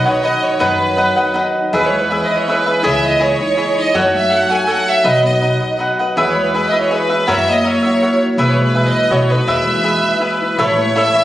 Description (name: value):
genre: mexican folk, mariachi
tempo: 162 BPM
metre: 3/4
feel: straight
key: E major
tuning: A4 = 445 Hz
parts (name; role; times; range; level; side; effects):
- clear chamber violin section; melody; 0.0-11.2 s; B4 to G#5; -17 LUFS; right 1 dB; none
- cavaquinho; accompaniment; 0.0-11.2 s; D#4 to F#5; -16 LUFS; equal; none
- Celtic harp; arpeggios; 0.0-11.2 s; D#3 to F#5; -21 LUFS; equal; none
- upright bass; bass; 0.6-11.1 s; A1 to F#2; -22 LUFS; equal; none
room: wet recital hall reverb, RT60 1.6 s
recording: recorded on a phone in the room, club reverb, nothing above 10.4 kHz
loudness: -12 LUFS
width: side -14 dB against mid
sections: 0.0-1.7 A section; 1.7-10.6 B section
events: none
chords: 0.0 B; 1.7 E; 2.8 C#madd9; 3.9 F#m; 5.0 B; 6.2 E; 7.3 F#7; 8.4 E/B; 9.1 B7; 9.5 E; 10.6 A